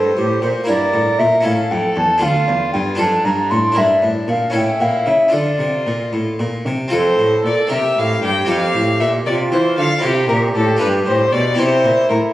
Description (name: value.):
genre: classical, baroque-style sonata movement with continuo.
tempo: 78 BPM (dotted quarters).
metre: 6/8.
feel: straight.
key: D minor, F major from 6.9 s.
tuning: A4 = 440 Hz.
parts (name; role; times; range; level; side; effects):
warm violin; melody; 0.0-12.2 s; D4 to G5; -20 LUFS; left 2 dB; none.
baroque flute; second line; 0.0-12.3 s; E4 to C6; -18 LUFS; right 1 dB; none.
harpsichord; accompaniment; 0.0-12.3 s; D2 to Bb4; -21 LUFS; left 1 dB; none.
rich cello; bass; 0.0-12.2 s; D2 to E3; -21 LUFS; equal; none.
room: light reverb.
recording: recorded on a phone in the room, studio reverb.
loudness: -14 LUFS.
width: side -15 dB against mid.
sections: 0.0-6.9 A section; 6.9-12.3 A section.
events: none.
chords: 0.0 C; 0.7 Edim/G; 1.5 A; 2.2 Dm; 3.0 Dm/F; 3.8 Em7b5/G; 4.5 A; 5.3 Dm; 6.9 F; 7.7 C5; 8.5 F; 10.0 C; 10.8 G7; 11.6 C.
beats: | 0.69 1.45 | 2.22 2.99 | 3.76 4.54 | 5.33 6.13 | 6.92 7.71 | 8.49 9.27 | 10.04 10.82 | 11.59.